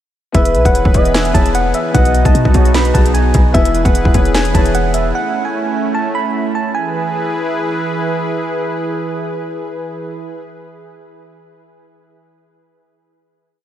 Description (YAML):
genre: hip hop, trap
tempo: 150 BPM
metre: 4/4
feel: half-time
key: E major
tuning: A4 = 439 Hz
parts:
  - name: soft electric-piano-like synth keys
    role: melody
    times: 0.3-7.9 s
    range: E5 to B5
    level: -20 LUFS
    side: right 2 dB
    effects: chorus, tape echo
  - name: gliding portamento lead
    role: second line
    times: 0.3-3.1 s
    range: B4 to E5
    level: -23 LUFS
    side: right 1 dB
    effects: chorus, tape echo
  - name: dark grand piano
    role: accompaniment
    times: 0.3-5.2 s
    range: B3 to C#5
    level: -21 LUFS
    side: left 5 dB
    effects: wide subtle chorus
  - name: warm analog pad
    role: sustained chords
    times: 0.3-10.4 s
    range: E3 to B4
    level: -20 LUFS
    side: right 1 dB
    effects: chorus
  - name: clean 808-style bass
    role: bass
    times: 0.3-5.1 s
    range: E1 to B2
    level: -15 LUFS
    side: equal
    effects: none
  - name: trap drum kit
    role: drums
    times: 0.3-5.0 s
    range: handclaps, hi-hat, kick drum, snare drum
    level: -15 LUFS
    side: equal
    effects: none
room: moderate huge ambient reverb, RT60 5.2 s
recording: dreamy mix soaked in reverb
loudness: -12 LUFS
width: side -11 dB against mid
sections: 0.3-6.7 hook; 6.7-9.9 final chord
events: none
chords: 0.3 E; 1.9 B; 3.5 E; 5.1 A; 6.7 E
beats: | 0.35 0.75 1.15 1.55 | 1.95 2.35 2.75 3.15 | 3.55 3.95 4.35 4.75 | 5.15 5.55 5.95 6.35 | 6.75 7.15 7.55 7.95 | 8.35 8.75 9.15 9.55